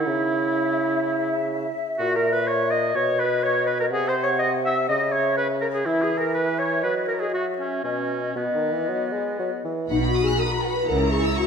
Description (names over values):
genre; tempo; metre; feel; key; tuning
quick classical-period movement for symphony orchestra; 124 BPM; 4/4; rubato; B major; A4 = 436 Hz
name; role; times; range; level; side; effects
clear oboe; second line; 0.0-9.6 s; B3 to E5; -28 LUFS; right 2 dB; none
mellow flute section; second line; 0.0-9.6 s; D#5 to F#5; -28 LUFS; left 3 dB; none
warm clarinet; second line; 0.0-9.7 s; B3 to E5; -26 LUFS; equal; none
mellow bassoon; accompaniment; 0.0-9.9 s; A#2 to G#3; -27 LUFS; right 1 dB; none
rich studio violin section; melody; 9.9-11.5 s; A#5 to B5; -32 LUFS; left 3 dB; none
rich studio violin section; second line; 9.9-11.5 s; F#5 to F#6; -30 LUFS; right 1 dB; none
warm studio viola section; accompaniment; 9.9-11.5 s; E4 to F#4; -30 LUFS; equal; none
mellow French horn section; sustained chords; 9.9-11.5 s; D#4 to B4; -23 LUFS; left 3 dB; none
rich studio cello section; bass; 9.9-11.3 s; B2 to C#3; -28 LUFS; right 1 dB; none
rich studio double bass section; bass; 9.9-11.3 s; B1 to C#2; -27 LUFS; right 2 dB; none
room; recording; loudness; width
moderate scoring stage reverb, RT60 2.0 s; minimal, uncompressed stereo recording; -21 LUFS; side -6 dB against mid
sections
0.0-9.9 A section; 9.9-11.5 B section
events
none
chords
0.1 C#m; 2.0 C#m13/A#; 2.9 B; 3.9 G#7b13/B#; 4.9 C#m; 5.8 N.C.; 6.8 B/F#; 7.8 B; 10.9 F#7/C#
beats
| 0.07 0.55 1.03 1.51 | 1.99 2.47 2.94 3.42 | 3.91 4.39 4.88 5.37 | 5.85 6.33 6.83 7.33 | 7.84 8.36 8.88 9.39 | 9.90 10.40 10.88 11.37